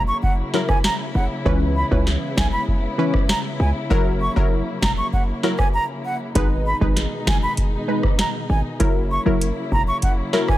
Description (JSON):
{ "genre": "dancehall", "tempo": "98 BPM", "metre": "4/4", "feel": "straight", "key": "unclear", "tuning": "A4 = 440 Hz", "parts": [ { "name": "jazz flute", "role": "melody", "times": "0.0-10.6 s", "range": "F#5 to C#6", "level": "-26 LUFS", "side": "right 2 dB", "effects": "none" }, { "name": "muted studio string section", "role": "sustained chords", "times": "0.0-10.6 s", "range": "B2 to E4", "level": "-28 LUFS", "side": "left 1 dB", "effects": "sidechain pumping" }, { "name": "hard-hitting 808-style bass", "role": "bass", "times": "0.0-9.8 s", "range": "E1 to C#2", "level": "-21 LUFS", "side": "equal", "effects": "none" }, { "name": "booming analog drum machine", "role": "drums", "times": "0.2-10.6 s", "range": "hi-hat, kick drum, rim click, snare drum", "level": "-21 LUFS", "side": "equal", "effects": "none" }, { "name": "analog pluck", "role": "accompaniment", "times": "0.5-10.5 s", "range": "E3 to B4", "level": "-23 LUFS", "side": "left 1 dB", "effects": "chorus" } ], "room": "little or no reverb", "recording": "none", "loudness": "-18 LUFS", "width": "side -15 dB against mid", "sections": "0.0-10.6 A section", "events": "break 0.0-6.4", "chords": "0.0 F#7; 1.5 C#m7; 3.9 F#7; 6.4 G#m; 8.8 F#7" }